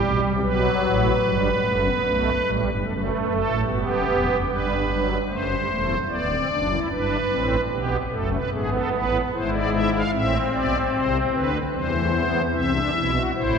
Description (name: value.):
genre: classical, baroque-style 3-part fugue for pipe organ.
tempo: 75 BPM.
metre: 4/4.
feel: straight.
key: unclear.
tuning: A4 = 443 Hz.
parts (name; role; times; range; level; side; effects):
pipe organ, strings celeste; solo; 0.0-13.6 s; D1 to F5; -20 LUFS; equal; none.
room: wet church reverb, RT60 3.4 s.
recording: recorded in a church or concert hall.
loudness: -20 LUFS.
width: side -6 dB against mid.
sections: 0.0-5.3 A section; 5.3-13.6 B section.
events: none.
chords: 0.4 B5; 3.7 Em; 5.3 D7; 6.9 G; 8.5 E/G#; 10.1 Am; 11.7 C/E.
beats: 0.44 1.25 | 2.05 2.85 3.66 4.48 | 5.30 6.11 6.92 7.73 | 8.53 9.33 10.13 10.93 | 11.73 12.53 13.33.